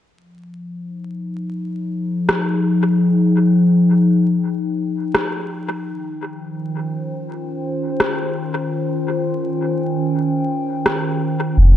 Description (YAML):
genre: ambient dub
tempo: 84 BPM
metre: 4/4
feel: swing 54% on 16ths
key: F minor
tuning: A4 = 440 Hz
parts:
  - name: warbly tape-like pad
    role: sustained chords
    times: 0.7-11.8 s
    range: Eb3 to G5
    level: -18 LUFS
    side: left 1 dB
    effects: chorus, built-in reverb
  - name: electronic rim click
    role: drums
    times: 2.3-11.0 s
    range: none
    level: -21 LUFS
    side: equal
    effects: dub echo
  - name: round analog bass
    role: bass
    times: 11.6-11.8 s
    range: F1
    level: -9 LUFS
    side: equal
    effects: none
room: wet spring reverb, RT60 2.0 s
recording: echo-heavy mix, vinyl crackle, nothing above 10.7 kHz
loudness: -17 LUFS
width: side -11 dB against mid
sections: 0.1-11.8 A section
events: filter sweep on ambient pad 0.1-11.8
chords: 0.1 Fm9; 5.9 Eb13